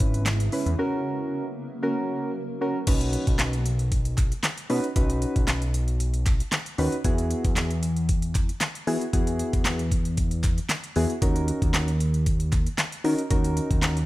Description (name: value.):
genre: dance-pop.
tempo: 115 BPM.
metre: 4/4.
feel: straight.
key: B major.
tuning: A4 = 441 Hz.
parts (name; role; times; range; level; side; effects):
soft electric-piano-like synth keys; accompaniment; 0.0-14.0 s; B3 to B4; -27 LUFS; equal; chorus, sidechain pumping.
shimmering ambient pad; sustained chords; 0.1-2.8 s; C#3 to E4; -35 LUFS; right 1 dB; chorus, built-in reverb, phaser, sidechain pumping.
fat analog bass; bass; 0.0-14.1 s; G#1 to E3; -26 LUFS; equal; sidechain pumping.
pop drum kit; drums; 0.0-14.1 s; crash cymbal, handclaps, hi-hat, kick drum, snare drum; -25 LUFS; equal; none.
group handclap; percussion; 0.3-14.0 s; none; -37 LUFS; right 1 dB; none.
room: little or no reverb.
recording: none.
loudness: -22 LUFS.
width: side -17 dB against mid.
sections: 0.0-2.9 A section; 2.9-14.1 B section.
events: break 0.8-2.9.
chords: 0.0 C#m7; 0.8 F#; 2.9 Badd9; 7.0 Eadd9; 11.2 D#m7.